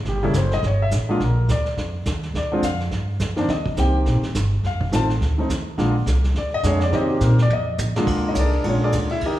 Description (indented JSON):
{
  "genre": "jazz piano trio",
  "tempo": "210 BPM",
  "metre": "4/4",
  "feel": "swing 60% on 8ths",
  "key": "Bb mixolydian",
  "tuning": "A4 = 444 Hz",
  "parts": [
    { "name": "upright bass", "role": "bass", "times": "0.0-9.4 s", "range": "Eb1 to C3", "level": "-21 LUFS", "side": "equal", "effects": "none" },
    { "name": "warm concert grand piano", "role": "melody", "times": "0.1-9.4 s", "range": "C#3 to A5", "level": "-22 LUFS", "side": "left 1 dB", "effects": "none" },
    { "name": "vintage brush drum kit", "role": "drums", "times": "0.1-9.3 s", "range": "brushed snare drum, crash cymbal, hi-hat, kick drum, ride cymbal, snare drum, toms", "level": "-29 LUFS", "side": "right 2 dB", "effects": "none" }
  ],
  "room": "moderate scoring stage reverb, RT60 1.7 s",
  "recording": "studio reverb",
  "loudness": "-18 LUFS",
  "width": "side -14 dB against mid",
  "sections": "0.0-8.1 A section; 8.1-9.4 A section",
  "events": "grand piano solo 0.0-9.4; drum fill 7.5-8.1",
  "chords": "0.1 Em6 (rootless); 1.2 Bb; 2.3 Dm; 2.9 G5; 3.5 Cm7; 4.6 F7; 5.8 Bb7; 6.9 Cm7; 7.5 F7; 8.1 Bb7",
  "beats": "| 0.06 0.34 0.63 0.91 | 1.20 1.49 1.77 2.06 | 2.34 2.63 2.92 3.20 | 3.49 3.77 4.06 4.35 | 4.63 4.92 5.21 5.49 | 5.78 6.06 6.35 6.64 | 6.92 7.21 7.50 7.78 | 8.07 8.35 8.64 8.93 | 9.21"
}